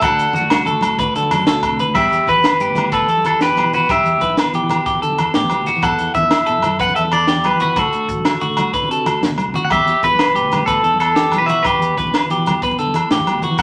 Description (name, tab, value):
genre	highlife guitar band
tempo	124 BPM (dotted quarters)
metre	12/8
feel	straight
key	E minor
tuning	A4 = 440 Hz
part	electric guitar at the edge of break-up	melody	0.0-13.6 s	A4 to F#5	-19 LUFS	equal	none
part	clean electric guitar	accompaniment	0.0-13.6 s	E2 to G4	-30 LUFS	equal	phaser
part	electric guitar at the edge of break-up	arpeggios	0.0-13.6 s	F#4 to B4	-22 LUFS	equal	spring reverb
part	fingered electric bass	bass	0.0-13.6 s	A1 to E3	-28 LUFS	equal	none
part	compact cocktail drum kit	drums	0.0-13.6 s	crash cymbal, hi-hat, kick drum, snare drum	-24 LUFS	equal	none
part	agogo bells	percussion	0.0-13.6 s	none	-25 LUFS	equal	none
part	congas	percussion	0.0-13.6 s	none	-30 LUFS	equal	none
room	wet studio reverb, RT60 0.6 s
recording	vinyl crackle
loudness	-16 LUFS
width	mono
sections	0.0-2.0 A section; 2.0-13.6 B section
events	drum fill 1.5-2.0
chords	0.0 D; 2.0 Em; 5.8 Asus2/E; 7.8 D; 9.7 Em